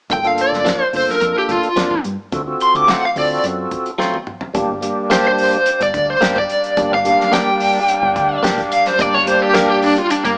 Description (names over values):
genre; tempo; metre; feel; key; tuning
straight-eighth soul blues; 108 BPM; 4/4; straight; G minor; A4 = 440 Hz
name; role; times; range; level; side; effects
crunchy overdriven guitar; melody; 0.1-10.4 s; Bb3 to D6; -14 LUFS; equal; tremolo
tonewheel organ; accompaniment; 0.1-10.0 s; G3 to A4; -20 LUFS; equal; overdrive, chorus vibrato, slow rotary speaker
deep dub fingered electric bass; bass; 0.1-10.3 s; G1 to G2; -28 LUFS; equal; none
warm soul drum kit; drums; 0.1-10.4 s; hi-hat, kick drum, snare drum, toms; -24 LUFS; equal; none
direct-recorded clean electric guitar; stabs; 0.6-9.7 s; F3 to G4; -20 LUFS; equal; none
clear horn section; sustained chords; 4.6-10.4 s; G3 to D4; -23 LUFS; equal; none
room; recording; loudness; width
moderate large studio reverb, RT60 1.1 s; band playing live in one room, small speaker sound; -13 LUFS; side -33 dB against mid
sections
0.1-4.5 A section; 4.5-10.4 B section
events
drum fill 4.0-4.5; overdriven electric guitar solo 4.5-10.4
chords
0.1 Gm7; 2.3 D7#9; 4.5 Gm